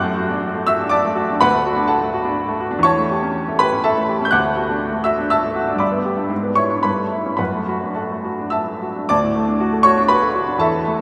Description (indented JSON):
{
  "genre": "classical, romantic character piece for solo piano",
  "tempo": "104-128 BPM",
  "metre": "3/4",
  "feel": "rubato",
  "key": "D major",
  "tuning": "A4 = 440 Hz",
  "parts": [
    { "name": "clear baby grand piano", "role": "solo", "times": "0.0-11.0 s", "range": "D2 to G6", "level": "-18 LUFS", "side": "equal", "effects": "none" }
  ],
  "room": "wet cathedral reverb, RT60 5.5 s",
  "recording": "none",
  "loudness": "-19 LUFS",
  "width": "mono",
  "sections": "0.0-9.1 A section; 9.1-11.0 B section",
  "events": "none",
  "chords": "0.0 D/F#; 1.4 D; 2.8 A7/E; 4.3 D; 5.8 G; 6.3 E7/G#; 6.8 A7/G; 7.4 D/F#; 9.1 D",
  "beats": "0.43 0.91 | 1.40 1.89 2.36 | 2.84 3.35 3.84 | 4.33 4.82 5.32 | 5.81 6.31 6.83 | 7.39 7.96 8.52 | 9.08 9.59 10.08 | 10.59"
}